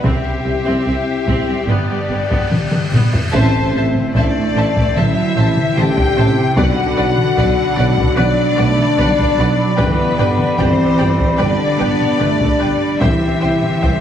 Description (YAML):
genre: cinematic, epic orchestral film score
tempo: 74 BPM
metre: 4/4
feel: straight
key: A dorian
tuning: A4 = 442 Hz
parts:
  - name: rich symphonic violin section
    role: melody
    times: 0.0-14.0 s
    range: B4 to G5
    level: -23 LUFS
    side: left 4 dB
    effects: none
  - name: rich studio violin section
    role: second line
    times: 0.0-13.9 s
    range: G4 to A5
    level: -26 LUFS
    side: left 4 dB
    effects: none
  - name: bright symphonic viola section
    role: accompaniment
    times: 0.0-13.9 s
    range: B3 to D5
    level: -26 LUFS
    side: right 1 dB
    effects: none
  - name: dark French horn section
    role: sustained chords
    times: 0.0-14.0 s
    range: B3 to G4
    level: -20 LUFS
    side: left 2 dB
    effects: none
  - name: warm woodwind section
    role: sustained chords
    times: 0.0-14.0 s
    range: C4 to B5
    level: -24 LUFS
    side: left 1 dB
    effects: none
  - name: clear symphonic cello section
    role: bass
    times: 0.0-14.0 s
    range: C2 to B3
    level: -21 LUFS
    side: right 2 dB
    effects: none
  - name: rich symphonic double bass section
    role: bass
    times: 0.0-13.9 s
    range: G1 to C2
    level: -22 LUFS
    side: right 2 dB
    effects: none
  - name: taiko ensemble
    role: drums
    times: 0.0-14.0 s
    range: none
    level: -19 LUFS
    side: equal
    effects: none
  - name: cymbal swell and impact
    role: sound effects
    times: 1.6-6.6 s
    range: none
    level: -29 LUFS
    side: left 1 dB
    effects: none
  - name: dark tuba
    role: bass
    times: 3.3-14.0 s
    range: G1 to C2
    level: -23 LUFS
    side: right 2 dB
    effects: none
room: wet scoring stage reverb, RT60 1.8 s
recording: heavily compressed radio sound, multiband compression, small room reverb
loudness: -13 LUFS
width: side -9 dB against mid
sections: 0.0-3.3 A section; 3.3-14.0 B section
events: build-up 0.0-3.3; cymbal swell 1.6-3.3; drum fill 2.5-3.3; band accent 3.3-4.2; impact 3.3-6.6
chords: 0.0 C; 1.7 G; 3.3 Am; 6.6 Bm; 9.8 G; 13.0 C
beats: | 0.05 0.86 1.69 2.52 | 3.34 4.15 4.97 5.77 | 6.57 7.38 8.18 8.98 | 9.79 10.59 11.39 12.20 | 13.01 13.83